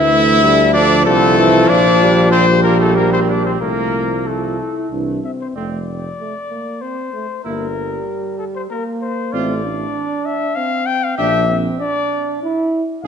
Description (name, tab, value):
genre	classical, brass quintet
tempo	96 BPM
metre	3/4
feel	straight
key	F major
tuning	A4 = 436 Hz
part	mellow trumpet	melody	0.0-13.1 s	A4 to G5	-19 LUFS	left 6 dB	none
part	clear trumpet	second line	0.0-13.1 s	A3 to G4	-21 LUFS	right 5 dB	none
part	mellow French horn	accompaniment	0.0-13.1 s	F3 to F4	-20 LUFS	left 2 dB	none
part	mellow trombone	accompaniment	0.0-12.8 s	D3 to E4	-21 LUFS	right 4 dB	none
part	warm tuba	bass	0.0-13.1 s	F1 to D2	-19 LUFS	right 2 dB	none
room	wet recital hall reverb, RT60 1.9 s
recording	nothing above 10.9 kHz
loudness	-14 LUFS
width	side -7 dB against mid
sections	0.0-5.6 A section; 5.6-13.1 B section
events	none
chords	0.0 Dm; 1.7 Gm7/Bb; 3.6 F/C; 4.9 C; 5.6 F; 7.4 Edim/G (rootless); 9.3 F/A; 11.2 Gm/Bb (rootless)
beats	0.43 1.06 | 1.70 2.33 2.96 | 3.61 4.26 4.91 | 5.56 6.19 6.82 | 7.45 8.07 8.70 | 9.33 9.95 10.57 | 11.19 11.81 12.42 | 13.05